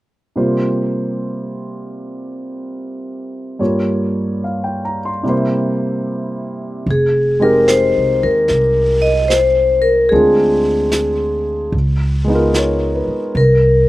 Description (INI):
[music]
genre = jazz ballad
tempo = 74 BPM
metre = 4/4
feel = swing 66% on 8ths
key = F minor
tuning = A4 = 440 Hz
[part]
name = warm grand piano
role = accompaniment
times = 0.4-13.5 s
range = G2 to C6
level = -19 LUFS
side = right 1 dB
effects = slapback echo
[part]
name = vibraphone with medium hard mallets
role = melody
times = 6.9-13.9 s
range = Ab4 to Eb5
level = -13 LUFS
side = left 1 dB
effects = none
[part]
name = upright bass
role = bass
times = 6.9-13.9 s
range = F1 to Eb2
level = -18 LUFS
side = right 1 dB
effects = none
[part]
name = vintage brush drum kit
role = drums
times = 6.9-13.9 s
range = brushed snare drum, hi-hat, snare drum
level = -26 LUFS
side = right 1 dB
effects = none
[sound]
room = little or no reverb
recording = recorded outdoors, with no room sound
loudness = -13 LUFS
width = side -17 dB against mid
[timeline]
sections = 0.3-6.9 A section; 6.9-13.9 B section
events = none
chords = 0.3 C7sus4; 3.6 Gm7b5; 5.2 C7; 6.9 Fm11; 10.1 Dm7b5; 11.7 Db13; 13.4 C7(no3)